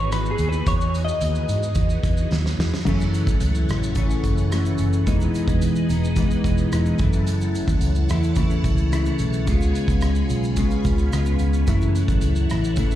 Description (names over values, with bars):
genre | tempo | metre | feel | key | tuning
indie pop, bedroom pop | 109 BPM | 4/4 | straight | unclear | A4 = 440 Hz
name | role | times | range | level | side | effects
clean electric guitar | accompaniment | 0.0-13.0 s | F#2 to D#5 | -23 LUFS | left 2 dB | analog chorus, vibrato effect, slapback echo
phased string machine | sustained chords | 0.0-13.0 s | E3 to B5 | -31 LUFS | right 1 dB | ensemble chorus, phaser
vintage muted fingered electric bass | bass | 0.0-12.9 s | E1 to G#2 | -22 LUFS | equal | none
loose indie drum kit | drums | 0.1-13.0 s | crash cymbal, hi-hat, kick drum, rim click, shaker, snare drum | -25 LUFS | equal | none
tube shaker | percussion | 2.9-13.0 s | none | -50 LUFS | right 2 dB | none
room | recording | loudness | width
little or no reverb | live gig heard through the venue's PA, club reverb | -18 LUFS | side -12 dB against mid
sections
0.0-2.9 A section; 2.9-13.0 B section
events
clean electric guitar solo 0.0-2.9; drum fill 2.3-2.9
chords
0.0 Emaj7; 2.9 F#m7; 5.1 Emaj7; 7.0 F#m7; 9.5 C#7; 11.7 F#m7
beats
0.12 | 0.67 1.22 1.77 2.32 | 2.87 3.42 3.97 4.52 | 5.07 5.62 6.17 6.72 | 7.27 7.82 8.37 8.92 | 9.47 10.03 10.58 11.13 | 11.68 12.23 12.78